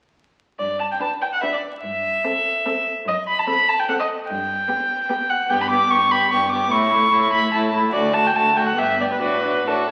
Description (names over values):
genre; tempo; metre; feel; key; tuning
quick classical-period movement for string quartet; 146 BPM; 3/4; rubato; G major, D major from 5.5 s; A4 = 441 Hz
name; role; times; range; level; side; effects
dark violin; melody; 0.6-9.9 s; A4 to D6; -21 LUFS; equal; none
warm cello; bass; 0.6-9.9 s; D2 to A2; -33 LUFS; equal; none
dark violin; second line; 1.0-9.9 s; E4 to B4; -28 LUFS; equal; none
warm viola; accompaniment; 1.0-9.9 s; A3 to D4; -30 LUFS; equal; none
room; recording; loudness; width
wet recital hall reverb, RT60 1.4 s; very old 78 rpm record, vinyl crackle; -20 LUFS; mono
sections
0.6-9.9 A section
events
none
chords
0.6 G; 1.8 Am7/G; 3.1 F#dim; 4.3 G; 6.7 A; 7.9 D; 8.8 G; 9.2 D/A